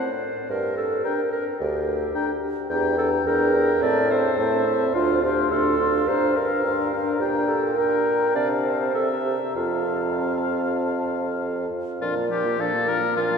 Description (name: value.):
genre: quick classical-period movement for wind quintet.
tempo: 96-110 BPM.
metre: 4/4.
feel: rubato.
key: F major.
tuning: A4 = 441 Hz.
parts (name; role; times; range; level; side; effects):
mellow hollow concert flute; melody; 0.0-13.4 s; D5 to C6; -31 LUFS; left 5 dB; none.
warm oboe; second line; 0.0-13.4 s; F4 to G5; -29 LUFS; left 5 dB; none.
dark French horn; accompaniment; 0.0-13.4 s; F3 to D4; -30 LUFS; left 1 dB; none.
warm clarinet; accompaniment; 0.0-13.4 s; D4 to D5; -25 LUFS; right 3 dB; none.
warm bassoon; bass; 0.5-13.4 s; D2 to C3; -25 LUFS; equal; none.
room: wet cathedral reverb, RT60 5.5 s.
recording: heard from further back in the room.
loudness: -20 LUFS.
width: side -6 dB against mid.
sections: 0.0-12.0 A section; 12.0-13.4 B section.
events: none.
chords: 0.0 F#(b5, no3); 0.5 Gm; 2.7 Em7b5; 3.8 Am; 4.9 Dm7; 6.1 Gm7; 7.2 Gm/Bb; 8.4 F/C; 8.9 C7; 9.6 F; 12.0 Bb.